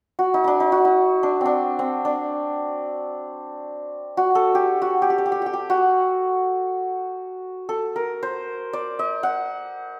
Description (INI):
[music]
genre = persian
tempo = free time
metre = none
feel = none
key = unclear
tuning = A4 = 440 Hz
[part]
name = santur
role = melody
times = 0.2-10.0 s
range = C4 to F#5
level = -22 LUFS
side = equal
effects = none
[sound]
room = wet recital hall reverb, RT60 1.5 s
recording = recorded in a church or concert hall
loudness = -22 LUFS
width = mono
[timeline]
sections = 0.0-10.0 A section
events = none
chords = none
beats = free time